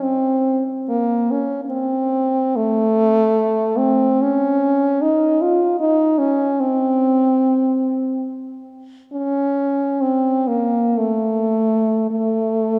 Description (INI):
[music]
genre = classical, free, expressive piece for unaccompanied French horn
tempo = 48-77 BPM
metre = 3/4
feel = rubato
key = unclear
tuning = A4 = 442 Hz
[part]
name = clear French horn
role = solo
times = 0.0-12.8 s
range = A3 to F4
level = -19 LUFS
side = equal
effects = none
[sound]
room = wet church reverb, RT60 2.9 s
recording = dark, warm production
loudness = -18 LUFS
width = mono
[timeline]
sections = 0.0-12.8 A section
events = none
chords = none